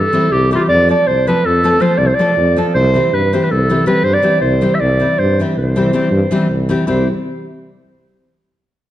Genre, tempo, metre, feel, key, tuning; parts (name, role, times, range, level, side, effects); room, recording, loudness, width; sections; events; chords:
balkan folk, Balkan wedding band; 320 BPM (eighths); 11/8; straight; C major; A4 = 437 Hz
warm clarinet; melody; 0.0-7.1 s; F4 to E5; -15 LUFS; right 1 dB
mellow tuba; bass; 0.0-7.1 s; C2 to G2; -17 LUFS; equal
nylon-string guitar; accompaniment; 0.1-7.1 s; E3 to A4; -17 LUFS; left 1 dB
wet recital hall reverb, RT60 1.5 s; dark, warm production; -11 LUFS; side -13 dB against mid
0.0-6.9 A section; 6.9-8.9 B section
0.0 C; 0.7 F; 2.7 C